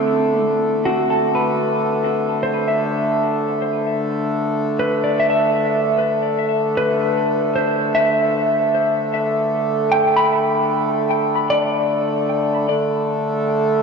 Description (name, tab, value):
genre	ambient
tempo	76 BPM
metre	4/4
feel	straight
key	unclear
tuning	A4 = 440 Hz
part	semi-hollow electric guitar	arpeggios	0.0-13.0 s	C4 to B5	-19 LUFS	equal	spring reverb, ping-pong delay
part	hand-pumped harmonium	drone	0.0-13.8 s	D3 to A3	-20 LUFS	equal	none
room	wet cathedral reverb, RT60 5.5 s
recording	in a vast, echoing space, cassette tape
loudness	-16 LUFS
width	side -5 dB against mid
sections	0.0-12.7 A section; 12.7-13.8 B section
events	none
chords	0.1 C/D; 12.7 D5